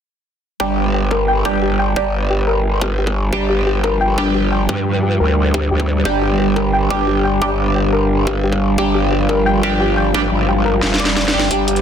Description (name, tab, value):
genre	dark technical drum and bass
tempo	176 BPM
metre	4/4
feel	straight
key	unclear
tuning	A4 = 440 Hz
part	dark analog pad	sustained chords	1.7-11.8 s	G3 to G4	-22 LUFS	right 1 dB	chorus, sidechain pumping
part	soft round pluck	arpeggios	0.6-11.8 s	G4 to G5	-21 LUFS	left 3 dB	lush chorus, sidechain pumping, dub echo
part	band-passed chord stab	stabs	0.6-11.8 s	G3 to G4	-21 LUFS	right 2 dB	phaser, wide subtle chorus, dub echo
part	growl bass	bass	0.6-11.8 s	F1 to G2	-18 LUFS	equal	chorus, overdrive
part	electronic kick drum	drums	0.6-11.6 s	none	-24 LUFS	equal	high-pass filter on kick, high-pass filter on room
part	warbly tape-like pad	texture	0.6-11.8 s	G4 to G5	-28 LUFS	left 2 dB	chorus, built-in reverb, sidechain pumping
part	drum and bass drum kit	drums	10.8-11.8 s	hi-hat, snare drum	-17 LUFS	equal	none
room	light reverb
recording	dense, heavily limited modern master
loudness	-14 LUFS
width	side -8 dB against mid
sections	0.6-11.8 A section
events	fade-in on ambient pad 0.6-11.8; filter sweep on synth pluck 0.6-11.8; filter sweep on synth stab 0.6-11.8; drum fill 10.8-11.5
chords	0.6 G5